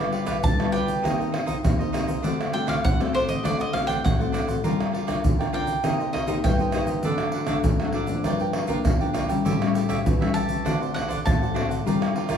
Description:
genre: samba and choro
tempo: 100 BPM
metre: 4/4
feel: straight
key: G minor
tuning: A4 = 440 Hz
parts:
  - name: cavaquinho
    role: accompaniment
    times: 0.0-12.4 s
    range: D4 to G5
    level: -31 LUFS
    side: right 5 dB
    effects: none
  - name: nylon-string guitar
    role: accompaniment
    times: 0.0-12.4 s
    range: G2 to Bb4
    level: -27 LUFS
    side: left 5 dB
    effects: none
  - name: pandeiro, egg shaker, surdo and tamborim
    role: percussion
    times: 0.1-12.4 s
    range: none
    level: -24 LUFS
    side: right 1 dB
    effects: none
  - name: bowl-back mandolin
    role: melody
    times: 0.4-11.8 s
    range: A4 to A5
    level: -29 LUFS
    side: right 2 dB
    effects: none
room: moderate large studio reverb, RT60 1.1 s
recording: studio reverb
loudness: -21 LUFS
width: side -8 dB against mid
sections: 0.0-12.4 A section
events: mandolin solo 0.0-12.4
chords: 0.0 G7/D; 1.0 Cm7/Eb; 2.2 D7; 4.6 Gm7; 5.8 Cm7; 7.0 D; 8.2 Gm7; 9.5 A7; 10.7 D7; 11.9 Gm7

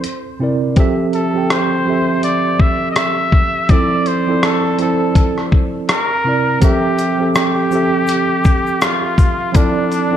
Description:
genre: lo-fi hip hop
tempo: 82 BPM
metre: 4/4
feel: swing 58% on 16ths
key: F major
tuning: A4 = 440 Hz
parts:
  - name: trumpet with straight mute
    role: melody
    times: 0.0-10.2 s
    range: D4 to E5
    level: -19 LUFS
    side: left 1 dB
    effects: low-pass filter, ping-pong delay
  - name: mellow tine electric piano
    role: accompaniment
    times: 0.0-10.2 s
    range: C3 to G5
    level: -17 LUFS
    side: right 2 dB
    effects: medium stereo tremolo, cassette tape, low-pass filter
  - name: dusty soul sampler-style drum kit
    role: drums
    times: 0.0-10.1 s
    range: hi-hat, kick drum, rim click, shaker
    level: -15 LUFS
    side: left 1 dB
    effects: none
  - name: egg shaker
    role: percussion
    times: 6.6-10.1 s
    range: none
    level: -45 LUFS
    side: left 8 dB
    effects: none
room: moderate plate reverb, RT60 2.1 s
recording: dreamy mix soaked in reverb, cassette tape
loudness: -13 LUFS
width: side -10 dB against mid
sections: 0.0-6.6 A section; 6.6-10.2 B section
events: none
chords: 0.0 C7; 0.8 Fmaj9; 3.7 Dm7/F; 5.9 C7; 6.6 Fmaj9; 9.5 Dm7/F

